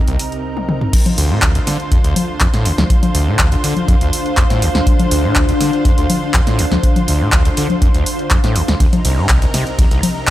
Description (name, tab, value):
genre	acid house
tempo	122 BPM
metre	4/4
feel	straight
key	D minor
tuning	A4 = 440 Hz
part	lush unison pad	sustained chords	0.0-10.3 s	C2 to C5	-24 LUFS	right 1 dB	chorus, sidechain pumping
part	granular cloud pad	texture	0.0-10.3 s	C4 to F5	-23 LUFS	left 2 dB	built-in reverb, sidechain pumping
part	overdriven acid bass	riff	0.1-10.0 s	C2 to D3	-18 LUFS	equal	distortion, tube saturation, wide subtle chorus, sidechain pumping
part	punchy analog drum machine	drums	0.1-10.3 s	congas, crash cymbal, handclaps, hi-hat, ride cymbal, snare drum, toms	-18 LUFS	left 1 dB	overdrive, small room reverb
part	electronic kick drum	drums	0.9-10.3 s	none	-15 LUFS	equal	overdrive, small room reverb
room	light reverb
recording	none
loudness	-12 LUFS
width	side -14 dB against mid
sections	0.9-10.3 A section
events	drum fill 0.6-0.9; drop 0.9-10.3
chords	0.0 Cm7; 0.9 Dm7; 8.8 Cm7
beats	0.44 | 0.93 1.43 1.92 2.41 | 2.90 3.39 3.88 4.38 | 4.87 5.36 5.85 6.34 | 6.83 7.33 7.82 8.31 | 8.80 9.29 9.79 10.28